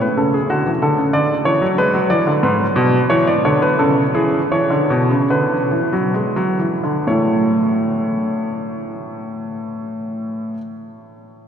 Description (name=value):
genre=classical, baroque-style two-part invention for grand piano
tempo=62-94 BPM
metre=3/4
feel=straight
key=A major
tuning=A4 = 445 Hz
part: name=warm baby grand piano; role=solo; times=0.0-10.6 s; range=G#2 to D5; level=-15 LUFS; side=equal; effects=none
room=wet cathedral reverb, RT60 7.6 s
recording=none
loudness=-15 LUFS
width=side -8 dB against mid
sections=0.0-7.1 A section; 7.1-11.5 B section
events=slowing down 1.5-7.1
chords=0.5 D; 1.8 G#m7b5; 2.4 E7/G#; 3.8 A/C#; 4.5 E7(no3); 7.1 A